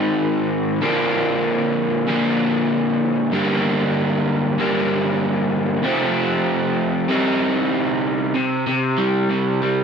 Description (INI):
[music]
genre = rock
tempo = 96 BPM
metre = 4/4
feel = straight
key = C minor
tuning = A4 = 440 Hz
[part]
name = crunchy overdriven guitar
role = solo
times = 0.0-9.8 s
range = F2 to Eb4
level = -17 LUFS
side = equal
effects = tape echo
[sound]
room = moderate large studio reverb, RT60 0.9 s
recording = none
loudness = -17 LUFS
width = side -6 dB against mid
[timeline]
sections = 0.0-8.4 A section; 8.4-9.8 B section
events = none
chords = 0.0 Ab; 0.8 Bb; 3.3 Gm; 5.8 F; 7.1 Cm; 8.4 C5